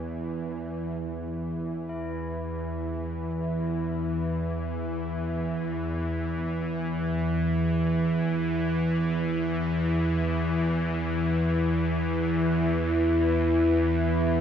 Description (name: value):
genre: dark ambient drone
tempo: free time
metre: none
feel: none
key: unclear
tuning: A4 = 440 Hz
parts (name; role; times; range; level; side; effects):
- tubular bells; arpeggios; 0.0-14.4 s; E4; -48 LUFS; left 2 dB; none
- bowed-like drone; drone; 0.0-14.4 s; E2 to E3; -26 LUFS; equal; built-in reverb
- deep dark ambient pad; sustained chords; 11.4-14.4 s; E4 to G5; -26 LUFS; left 1 dB; chorus, built-in reverb
room: wet spring reverb, RT60 2.5 s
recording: echo-heavy mix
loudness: -25 LUFS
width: side -8 dB against mid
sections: 0.0-1.0 A section; 1.0-14.4 B section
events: none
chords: 0.0 Em; 1.0 E5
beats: free time